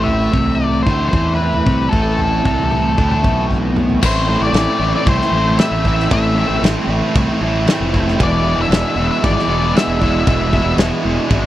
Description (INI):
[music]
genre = indie rock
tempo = 115 BPM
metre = 4/4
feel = straight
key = A minor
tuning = A4 = 437 Hz
[part]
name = octave-fuzz lead guitar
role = melody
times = 0.0-10.8 s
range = A4 to E5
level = -20 LUFS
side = left 3 dB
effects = distortion, slapback echo
[part]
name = crunchy overdriven guitar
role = riff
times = 0.0-11.5 s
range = E2 to E4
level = -19 LUFS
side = right 5 dB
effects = analog chorus
[part]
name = distorted electric guitar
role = riff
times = 0.0-11.5 s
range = A2 to E4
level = -21 LUFS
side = left 4 dB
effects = distortion
[part]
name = fuzz fingered electric bass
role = bass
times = 0.0-11.4 s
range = E1 to E2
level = -20 LUFS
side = equal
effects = overdrive
[part]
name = loose indie drum kit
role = drums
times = 0.1-11.4 s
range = crash cymbal, kick drum, ride cymbal, snare drum, toms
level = -18 LUFS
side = equal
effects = none
[sound]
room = studio ambience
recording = dry, close 1970s-style studio recording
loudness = -13 LUFS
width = side -14 dB against mid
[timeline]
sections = 0.0-4.0 A section; 4.0-11.5 B section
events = drum fill 3.5-4.0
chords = 0.0 Am; 8.2 E7